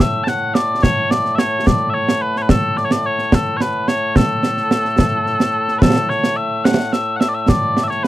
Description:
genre	scottish traditional, Scottish pipe music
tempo	72 BPM (dotted quarters)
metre	6/8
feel	straight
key	A major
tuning	A4 = 443 Hz
part	mellow small bagpipes	melody	0.0-8.1 s	A2 to A5	-18 LUFS	left 1 dB	none
part	concert snare drum and concert bass drum	drums	0.0-8.1 s	none	-16 LUFS	right 1 dB	none
room	light reverb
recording	dry, close 1970s-style studio recording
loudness	-14 LUFS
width	side -15 dB against mid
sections	0.0-5.8 A section; 5.8-8.1 B section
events	none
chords	none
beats	| 0.83 1.66 | 2.50 3.33 | 4.16 5.00 | 5.83 6.66 | 7.50

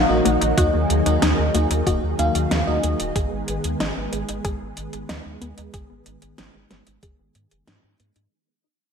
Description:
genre	synthwave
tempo	93 BPM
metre	4/4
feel	straight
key	unclear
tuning	A4 = 435 Hz
part	analog string pad	sustained chords	0.0-8.3 s	Eb3 to Ab4	-25 LUFS	equal	ensemble chorus, sidechain pumping
part	wide unison pluck	arpeggios	0.0-8.2 s	Bb3 to Ab4	-28 LUFS	left 3 dB	digital delay
part	FM electric piano with soft pad layer	stabs	0.0-3.1 s	Bb3 to F5	-24 LUFS	equal	chorus, digital delay
part	round analog bass	bass	0.0-8.3 s	Eb1 to Ab2	-24 LUFS	equal	tube saturation
part	pop drum kit	drums	0.3-8.3 s	hi-hat, snare drum	-27 LUFS	right 1 dB	overdrive, gated reverb
part	electronic kick drum	drums	0.6-7.2 s	none	-24 LUFS	equal	none
room	moderate lush hall reverb, RT60 1.8 s, digital ambience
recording	none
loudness	-19 LUFS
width	side -6 dB against mid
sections	0.0-8.3 A section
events	fade-out 0.0-8.3; filter sweep on synth arpeggio sound 0.0-8.3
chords	0.0 Ebm; 3.2 Abm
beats	| 0.58 1.22 1.87 2.51 | 3.16 3.80 4.45 5.09 | 5.74 6.38 7.03 7.67

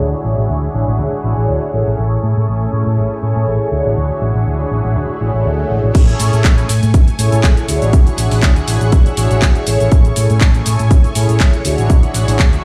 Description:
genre	filtered disco house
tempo	121 BPM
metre	4/4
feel	swing 54% on 16ths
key	A major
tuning	A4 = 441 Hz
part	mellow synth brass	accompaniment	0.0-12.6 s	C#4 to C#5	-22 LUFS	equal	chorus, phaser, sidechain pumping, low-pass filter
part	string machine, full ensemble	sustained chords	0.0-12.6 s	A3 to C#6	-29 LUFS	equal	ensemble chorus, vintage 12-bit sampler grit, sidechain pumping, low-pass filter
part	hollow-body short-scale fingered electric bass	bass	0.0-12.6 s	A1 to A2	-18 LUFS	equal	tube saturation, sidechain pumping, low-pass filter
part	swell	sound effects	5.1-5.9 s	none	-31 LUFS	equal	none
part	electronic kick drum	drums	5.9-12.5 s	none	-12 LUFS	equal	none
part	house drum kit	drums	5.9-12.6 s	cabasa, crash cymbal, handclaps, hi-hat	-24 LUFS	equal	sidechain pumping on hats, sidechain pumping on cymbals, sidechain pumping on perc
room	light reverb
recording	played on a big sound system in a bare room, stone room reverb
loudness	-14 LUFS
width	mono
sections	0.0-5.9 A section; 5.9-12.6 B section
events	filter sweep 0.0-5.9; swell 5.1-5.9; drop 5.9-12.6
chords	0.0 Dmaj9#11; 2.0 Amaj7; 3.7 Dmaj9#11; 5.9 Amaj7; 7.7 Dmaj9#11; 9.9 Amaj7; 11.7 Dmaj9#11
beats	| 0.00 0.49 0.99 1.49 | 1.98 2.48 2.97 3.47 | 3.97 4.46 4.96 5.45 | 5.95 6.45 6.94 7.44 | 7.93 8.43 8.92 9.42 | 9.92 10.41 10.91 11.40 | 11.90 12.39

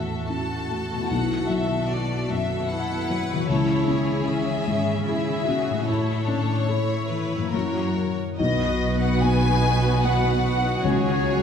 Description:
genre	cinematic, emotional film score for orchestra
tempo	75 BPM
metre	3/4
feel	rubato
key	A major, B major from 8.4 s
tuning	A4 = 441 Hz
part	rich studio violin section	melody	0.0-11.4 s	G#4 to A5	-31 LUFS	left 4 dB	none
part	clear studio violin section	second line	0.0-11.4 s	G#4 to G#5	-32 LUFS	left 3 dB	none
part	felt-muted upright piano	accompaniment	0.0-11.4 s	A1 to B4	-27 LUFS	left 2 dB	none
part	rich studio viola section	accompaniment	0.0-11.4 s	F#3 to F#4	-30 LUFS	right 3 dB	none
part	concert harp	arpeggios	0.0-11.4 s	F#2 to A4	-29 LUFS	left 4 dB	none
part	rich studio cello section	bass	0.0-11.4 s	F#2 to C#3	-28 LUFS	right 1 dB	none
part	flute section	second line	8.4-11.4 s	C#5 to G#5	-27 LUFS	left 2 dB	none
part	rich studio double bass section	bass	8.4-11.4 s	B1 to C#2	-26 LUFS	right 3 dB	none
room	wet scoring stage reverb, RT60 2.0 s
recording	minimal, uncompressed stereo recording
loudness	-21 LUFS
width	side -7 dB against mid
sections	0.0-8.4 A section; 8.4-11.4 B section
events	none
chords	0.0 A; 1.1 Esus2/B; 3.5 C#m; 5.9 A; 7.5 F#7; 8.4 B; 10.8 F#sus2/C#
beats	0.30 | 1.10 1.90 2.71 | 3.50 4.28 5.08 | 5.88 6.69 7.54 | 8.39 9.23 10.04 | 10.84

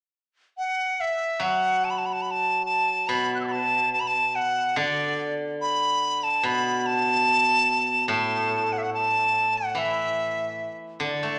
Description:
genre	chinese traditional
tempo	72 BPM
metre	4/4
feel	rubato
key	D gong mode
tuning	A4 = 440 Hz
part	dizi	melody	0.6-11.4 s	D5 to F#6	-25 LUFS	equal	none
part	steel-string zither	accompaniment	1.4-11.4 s	A2 to A3	-31 LUFS	equal	none
room	moderate scoring stage reverb, RT60 2.0 s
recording	none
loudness	-24 LUFS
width	mono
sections	0.0-11.4 A section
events	none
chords	none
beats	0.55 1.41 2.25 | 3.09 3.94 4.77 5.61 | 6.45 7.28 8.10 8.93 | 9.76 10.60

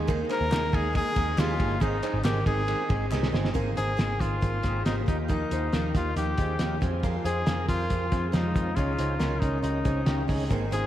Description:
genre	jangly indie pop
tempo	138 BPM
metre	4/4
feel	straight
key	unclear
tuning	A4 = 439 Hz
part	overdriven combo organ	accompaniment	0.0-10.9 s	Ab3 to Bb4	-35 LUFS	right 5 dB	none
part	picked steel-string acoustic guitar	accompaniment	0.0-10.9 s	Ab2 to C5	-36 LUFS	right 4 dB	lush chorus
part	electric guitar through a small old amp	arpeggios	0.0-10.9 s	Ab3 to C5	-34 LUFS	left 3 dB	wide subtle chorus
part	vintage muted picked electric bass	bass	0.0-10.9 s	G1 to F2	-30 LUFS	equal	none
part	cloth-damped thuddy drum kit	drums	0.1-10.8 s	hi-hat, kick drum, ride cymbal, snare drum	-29 LUFS	equal	none
part	clear trumpet	melody	0.3-10.9 s	Eb4 to Bb4	-31 LUFS	left 2 dB	tape echo
part	group handclap	percussion	0.3-3.2, 10.7-10.8 s	none	-47 LUFS	left 4 dB	none
room	moderate church reverb, RT60 3.6 s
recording	dreamy mix soaked in reverb, vinyl crackle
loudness	-24 LUFS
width	side -12 dB against mid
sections	0.0-3.6 A section; 3.6-10.9 B section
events	drum fill 3.1-3.6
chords	0.0 Ebsus4; 3.6 Abadd9; 5.1 Ebadd9; 6.8 Fm; 8.8 Dbsus2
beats	| 0.09 0.52 0.95 1.38 | 1.82 2.25 2.68 3.12 | 3.55 3.99 4.42 4.86 | 5.29 5.73 6.16 6.60 | 7.03 7.47 7.90 8.34 | 8.77 9.21 9.64 10.07 | 10.51

